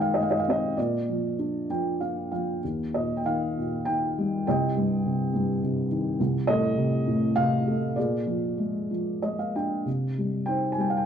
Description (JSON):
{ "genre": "classical, lyrical solo piano", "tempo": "91-105 BPM", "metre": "3/4", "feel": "rubato", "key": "unclear", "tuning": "A4 = 444 Hz", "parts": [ { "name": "felt-muted upright piano", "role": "solo", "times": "0.0-11.1 s", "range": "C2 to Ab5", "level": "-24 LUFS", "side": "equal", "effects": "none" } ], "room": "moderate recital hall reverb, RT60 1.6 s", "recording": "dark, warm production", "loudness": "-24 LUFS", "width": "side -8 dB against mid", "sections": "0.0-9.9 A section; 9.9-11.1 B section", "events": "felt piano fill 1.4-2.6, 8.9-9.9", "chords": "0.0 Ab; 0.8 Bb; 2.6 Eb; 4.5 Cm; 6.2 F7/C; 8.0 Bb7; 9.9 Cm", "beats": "0.17 | 0.77 1.38 2.00 | 2.63 3.25 3.86 | 4.46 5.05 5.62 | 6.19 6.77 7.36 | 7.96 8.58 9.22 | 9.86 10.48" }